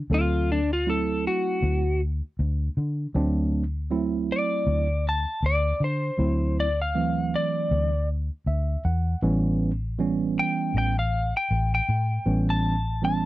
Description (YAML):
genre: straight-eighth soul blues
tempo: 79 BPM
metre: 4/4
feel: swing 55% on 16ths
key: D mixolydian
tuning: A4 = 441 Hz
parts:
  - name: lightly driven lead guitar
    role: melody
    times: 0.1-13.3 s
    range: D4 to A5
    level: -26 LUFS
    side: left 2 dB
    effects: none
  - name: tine electric piano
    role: accompaniment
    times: 0.1-13.3 s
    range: E3 to F#5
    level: -26 LUFS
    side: right 4 dB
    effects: auto-pan
  - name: vintage muted fingered electric bass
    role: bass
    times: 0.1-13.3 s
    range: A1 to D3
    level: -25 LUFS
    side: equal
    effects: none
room: little or no reverb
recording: dry, close 1970s-style studio recording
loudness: -22 LUFS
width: side -16 dB against mid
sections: 0.0-13.3 A section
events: tine electric piano fill 8.1-9.2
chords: 0.0 D9; 9.2 A9